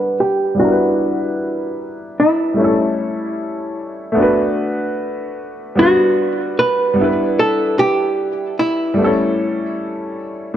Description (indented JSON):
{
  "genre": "lo-fi hip hop",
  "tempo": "75 BPM",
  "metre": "4/4",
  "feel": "swing 62% on 16ths",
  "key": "unclear",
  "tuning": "A4 = 439 Hz",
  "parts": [
    { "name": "archtop guitar, miked and amplified", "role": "melody", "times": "0.0-9.0 s", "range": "E4 to B4", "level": "-16 LUFS", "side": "right 1 dB", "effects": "low-pass filter" },
    { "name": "clear upright piano", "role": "accompaniment", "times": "0.0-10.6 s", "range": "G3 to F#5", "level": "-18 LUFS", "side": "left 1 dB", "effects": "cassette tape, low-pass filter" }
  ],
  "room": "moderate plate reverb, RT60 2.4 s",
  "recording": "dark, warm production",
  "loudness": "-15 LUFS",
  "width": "side -10 dB against mid",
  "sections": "0.0-10.6 A section",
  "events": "filter sweep 0.0-10.6; break 9.0-10.6",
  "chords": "0.0 Gmaj7; 0.6 Em7; 2.6 A7; 4.2 D6/A; 5.8 Gmaj7; 7.0 Em7; 9.0 A7"
}